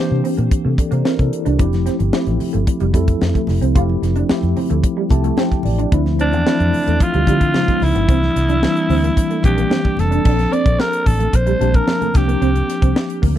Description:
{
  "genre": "polished 1980s jazz-funk pop",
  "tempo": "111 BPM",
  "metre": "4/4",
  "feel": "straight",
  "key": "F major",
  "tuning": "A4 = 440 Hz",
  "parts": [
    { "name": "breathy alto saxophone", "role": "melody", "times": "0.0-0.2, 6.2-13.2 s", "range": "D4 to D5", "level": "-20 LUFS", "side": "equal", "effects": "none" },
    { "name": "mellow tine electric piano", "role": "accompaniment", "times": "0.0-13.4 s", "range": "E3 to A5", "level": "-21 LUFS", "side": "left 2 dB", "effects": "fast stereo tremolo, wide subtle chorus" },
    { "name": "vintage muted fingered electric bass", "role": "bass", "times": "0.1-13.4 s", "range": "F1 to D3", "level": "-18 LUFS", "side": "equal", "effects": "none" },
    { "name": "electric guitar at the edge of break-up", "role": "riff", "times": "0.2-13.4 s", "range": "G3 to F4", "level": "-24 LUFS", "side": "right 8 dB", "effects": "ensemble chorus" },
    { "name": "tight funk drum kit", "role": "drums", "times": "0.2-13.4 s", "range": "crash cymbal, hi-hat, kick drum, snare drum", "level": "-18 LUFS", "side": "equal", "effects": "none" },
    { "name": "congas", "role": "percussion", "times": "1.6-13.4 s", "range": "none", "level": "-31 LUFS", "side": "left 3 dB", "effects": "none" }
  ],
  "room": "little or no reverb",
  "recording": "dry, close 1970s-style studio recording",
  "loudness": "-14 LUFS",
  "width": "side -11 dB against mid",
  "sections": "0.0-10.3 A section; 10.3-13.4 B section",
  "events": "tine electric piano fill 4.8-5.9",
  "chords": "0.0 C9; 1.6 Fmaj9; 5.9 Dm9; 7.5 Db9; 8.1 C9; 10.3 Bbmaj7; 12.1 C9sus4"
}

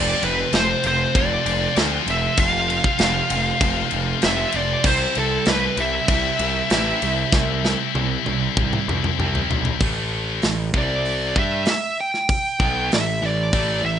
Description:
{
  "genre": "heavy metal",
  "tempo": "97 BPM",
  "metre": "4/4",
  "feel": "straight",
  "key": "unclear",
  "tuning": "A4 = 440 Hz",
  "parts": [
    { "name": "high-gain lead guitar", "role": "melody", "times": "0.0-14.0 s", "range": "A4 to G5", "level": "-23 LUFS", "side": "right 1 dB", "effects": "distortion" },
    { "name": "heavy high-gain guitar", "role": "riff", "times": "0.0-14.0 s", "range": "A2 to G4", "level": "-25 LUFS", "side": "left 16 dB", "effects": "distortion" },
    { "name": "scooped high-gain guitar", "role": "riff", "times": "0.0-14.0 s", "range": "F2 to G4", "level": "-29 LUFS", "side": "right 12 dB", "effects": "distortion" },
    { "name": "fuzz picked electric bass", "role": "bass", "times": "0.0-14.0 s", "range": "F1 to G2", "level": "-25 LUFS", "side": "equal", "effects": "overdrive" },
    { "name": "tight metal drum kit", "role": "drums", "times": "0.2-13.7 s", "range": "crash cymbal, hi-hat, kick drum, ride cymbal, snare drum, toms", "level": "-22 LUFS", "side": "equal", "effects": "none" }
  ],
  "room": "light reverb",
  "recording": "rough home demo mix, nothing above 10.3 kHz",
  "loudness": "-18 LUFS",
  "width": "side -9 dB against mid",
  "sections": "0.0-9.8 A section; 9.8-14.0 B section",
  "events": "drum fill 7.3-9.8; lead electric guitar solo 9.8-14.0",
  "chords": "0.0 F5; 4.9 C; 9.8 A5; 10.7 C5; 11.4 A5"
}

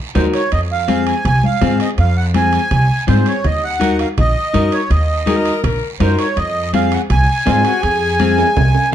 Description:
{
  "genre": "latin, cumbia",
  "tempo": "164 BPM",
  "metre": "4/4",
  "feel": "straight",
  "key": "unclear",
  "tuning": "A4 = 439 Hz",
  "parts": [
    { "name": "clean electric guitar", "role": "accompaniment", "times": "0.1-8.9 s", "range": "C4 to Bb4", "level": "-19 LUFS", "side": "left 4 dB", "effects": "none" },
    { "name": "accordion", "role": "melody", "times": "0.2-8.9 s", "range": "C5 to Ab5", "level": "-18 LUFS", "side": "right 3 dB", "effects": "light tremolo tuning" },
    { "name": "upright bass", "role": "bass", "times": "0.2-8.7 s", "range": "Bb1 to Ab2", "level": "-17 LUFS", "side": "equal", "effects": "none" },
    { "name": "congas", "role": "percussion", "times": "0.2-8.8 s", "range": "none", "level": "-22 LUFS", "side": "left 2 dB", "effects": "none" },
    { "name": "guiro", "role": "percussion", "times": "0.2-8.9 s", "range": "none", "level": "-33 LUFS", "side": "right 7 dB", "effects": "none" },
    { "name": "timbales", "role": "percussion", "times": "0.2-8.8 s", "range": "none", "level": "-28 LUFS", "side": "right 8 dB", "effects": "none" },
    { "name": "bright tenor saxophone", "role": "second line", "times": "5.3-8.6 s", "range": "F4 to Bb4", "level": "-21 LUFS", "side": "left 5 dB", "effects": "none" }
  ],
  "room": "moderate studio reverb, RT60 0.8 s",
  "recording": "dark, warm production",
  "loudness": "-13 LUFS",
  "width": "side -10 dB against mid",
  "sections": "0.0-8.9 A section",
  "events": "drum fill 8.4-8.9",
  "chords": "0.0 Ebm; 0.5 Fm; 3.4 Ebm; 6.4 Fm"
}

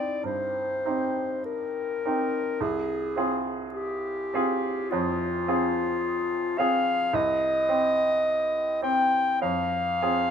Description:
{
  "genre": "classical, romantic duo for clarinet and grand piano",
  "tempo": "49-54 BPM",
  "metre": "4/4",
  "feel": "rubato",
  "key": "C minor",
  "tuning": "A4 = 440 Hz",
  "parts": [
    { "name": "warm clarinet", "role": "melody", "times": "0.0-10.3 s", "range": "F4 to G5", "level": "-26 LUFS", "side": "left 2 dB", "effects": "none" },
    { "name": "bright baby grand piano", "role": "accompaniment", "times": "0.0-10.3 s", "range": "C2 to Ab4", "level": "-28 LUFS", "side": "right 3 dB", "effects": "none" }
  ],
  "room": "light reverb",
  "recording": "minimal, uncompressed stereo recording",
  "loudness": "-24 LUFS",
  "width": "side -8 dB against mid",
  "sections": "0.0-10.3 A section",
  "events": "none",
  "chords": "0.0 Cm; 2.6 Fm/C; 7.1 Cm; 9.4 Fm"
}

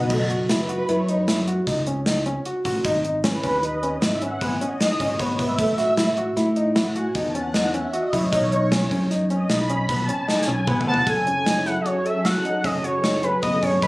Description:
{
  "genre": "progressive instrumental, band music in an uneven meter",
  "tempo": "153 BPM",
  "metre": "7/4",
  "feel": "straight",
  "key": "F# dorian",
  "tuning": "A4 = 437 Hz",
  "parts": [
    { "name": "analog string pad", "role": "accompaniment", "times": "0.0-13.9 s", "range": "F#3 to B5", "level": "-26 LUFS", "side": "equal", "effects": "ensemble chorus" },
    { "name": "modern bright picked electric bass", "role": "bass", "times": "0.0-13.9 s", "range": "F#1 to A2", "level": "-26 LUFS", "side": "equal", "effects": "none" },
    { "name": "warm grand piano", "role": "arpeggios", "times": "0.1-13.9 s", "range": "A3 to A4", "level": "-25 LUFS", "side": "equal", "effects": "none" },
    { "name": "gated 80s drum kit", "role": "drums", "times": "0.1-13.9 s", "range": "crash cymbal, hi-hat, kick drum, snare drum, toms", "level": "-24 LUFS", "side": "equal", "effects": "none" },
    { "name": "octave-doubled lead", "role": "melody", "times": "10.9-13.9 s", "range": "B4 to A5", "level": "-22 LUFS", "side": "equal", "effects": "chorus" }
  ],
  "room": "light reverb, small room ambience",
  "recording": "recorded on a phone in the room, club reverb",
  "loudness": "-20 LUFS",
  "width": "side -20 dB against mid",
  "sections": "0.1-11.1 A section; 11.1-13.9 B section",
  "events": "analog synth pad solo 0.1-11.1; drum fill 10.3-11.1",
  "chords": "0.1 F#5; 2.9 G#m; 5.6 A; 8.3 B; 11.1 F#madd9"
}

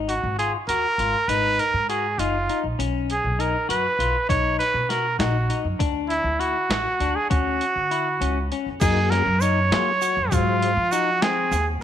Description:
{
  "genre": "progressive instrumental, band music in an uneven meter",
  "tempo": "199 BPM (eighths)",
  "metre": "5/8",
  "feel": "straight",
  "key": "unclear",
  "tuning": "A4 = 439 Hz",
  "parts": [
    { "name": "clean electric guitar", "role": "arpeggios", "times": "0.0-11.6 s", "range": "F#3 to F#4", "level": "-28 LUFS", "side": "left 11 dB", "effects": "spring reverb" },
    { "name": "upright bass", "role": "bass", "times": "0.0-11.8 s", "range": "F#1 to F#3", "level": "-26 LUFS", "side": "equal", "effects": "none" },
    { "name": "bright trumpet", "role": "melody", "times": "0.1-11.7 s", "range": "E4 to C#5", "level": "-22 LUFS", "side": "right 2 dB", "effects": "none" },
    { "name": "boom bap sampler-style drum kit", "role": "drums", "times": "0.1-11.7 s", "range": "crash cymbal, hi-hat, kick drum, snare drum", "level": "-27 LUFS", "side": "equal", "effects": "none" },
    { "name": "tonewheel organ", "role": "accompaniment", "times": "8.8-10.7 s", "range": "F#3 to B#4", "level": "-30 LUFS", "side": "left 13 dB", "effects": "overdrive, chorus vibrato, slow rotary speaker" },
    { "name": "tube shaker", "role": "percussion", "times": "8.8-11.8 s", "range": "none", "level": "-39 LUFS", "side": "right 15 dB", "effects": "none" }
  ],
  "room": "light reverb, studio reverb",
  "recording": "1960s-style stereo with parts hard left and right",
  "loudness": "-20 LUFS",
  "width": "side -10 dB against mid",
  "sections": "0.0-8.8 A section; 8.8-11.8 B section",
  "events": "break 8.2-8.8",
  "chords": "0.0 G#5; 2.8 B; 5.8 Dmaj7; 8.8 F#add9; 10.3 G#7"
}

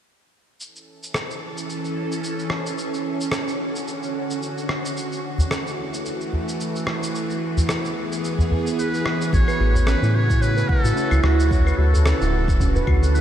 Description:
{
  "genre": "organic downtempo",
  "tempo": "110 BPM",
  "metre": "4/4",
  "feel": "swing 56% on 16ths",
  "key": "unclear",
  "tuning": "A4 = 439 Hz",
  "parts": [
    { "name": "bowed-like drone", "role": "sustained chords", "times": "1.2-13.2 s", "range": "C#3 to A4", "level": "-26 LUFS", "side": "right 1 dB", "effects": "built-in reverb, phaser, sidechain pumping, shimmer reverb" },
    { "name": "electronic cabasa, rim click and claves", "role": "drums", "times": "0.6-13.2 s", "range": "none", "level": "-29 LUFS", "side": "equal", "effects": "none" },
    { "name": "udu", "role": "percussion", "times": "5.4-13.0 s", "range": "none", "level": "-23 LUFS", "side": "equal", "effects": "none" },
    { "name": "trumpet with metal mute", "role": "melody", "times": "8.8-13.2 s", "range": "F#4 to C#5", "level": "-27 LUFS", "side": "equal", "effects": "diffuse ambient delay, shimmer reverb" },
    { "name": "handpan", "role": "arpeggios", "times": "9.3-13.2 s", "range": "C#4 to F#5", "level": "-26 LUFS", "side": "right 1 dB", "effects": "ping-pong delay, shimmer reverb" },
    { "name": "round analog bass", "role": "bass", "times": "9.3-13.2 s", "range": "D1 to A2", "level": "-18 LUFS", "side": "equal", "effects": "sidechain pumping" },
    { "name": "electronic kick drum", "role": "drums", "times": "9.3-13.0 s", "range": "none", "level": "-20 LUFS", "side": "equal", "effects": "none" }
  ],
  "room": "moderate huge ambient reverb, RT60 8.5 s",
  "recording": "dreamy mix soaked in reverb",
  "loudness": "-20 LUFS",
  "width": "side -10 dB against mid",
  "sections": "0.6-9.3 A section; 9.3-13.2 B section",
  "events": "none",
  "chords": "0.6 A; 2.8 Dmaj7; 5.0 F#m7; 7.1 E; 9.3 A; 11.5 Dmaj7"
}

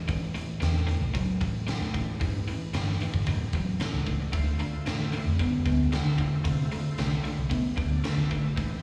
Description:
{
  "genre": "blues rock power trio and southern rock",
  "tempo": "113 BPM",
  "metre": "4/4",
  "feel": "straight",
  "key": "unclear",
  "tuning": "A4 = 439 Hz",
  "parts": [
    { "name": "crunchy overdriven guitar", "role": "riff", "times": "0.0-8.8 s", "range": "A2 to B3", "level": "-32 LUFS", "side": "equal", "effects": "none" },
    { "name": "vintage muted fingered electric bass", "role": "bass", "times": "0.1-8.8 s", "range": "G1 to D3", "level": "-32 LUFS", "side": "equal", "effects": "none" },
    { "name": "oversized low-tuned drum kit", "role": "drums", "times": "0.1-8.7 s", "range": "hi-hat, kick drum, snare drum", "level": "-34 LUFS", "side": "equal", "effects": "none" },
    { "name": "overdriven tonewheel organ", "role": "sustained chords", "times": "4.3-8.8 s", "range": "E4 to A5", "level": "-45 LUFS", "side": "equal", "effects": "slow rotary speaker, chorus vibrato" }
  ],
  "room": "light reverb",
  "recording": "live gig heard through the venue's PA, recital hall reverb",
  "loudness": "-28 LUFS",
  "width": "mono",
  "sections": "0.0-8.8 A section",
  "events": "tonewheel organ fill 7.5-8.6",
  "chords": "0.0 A7(no3); 4.3 Dm7"
}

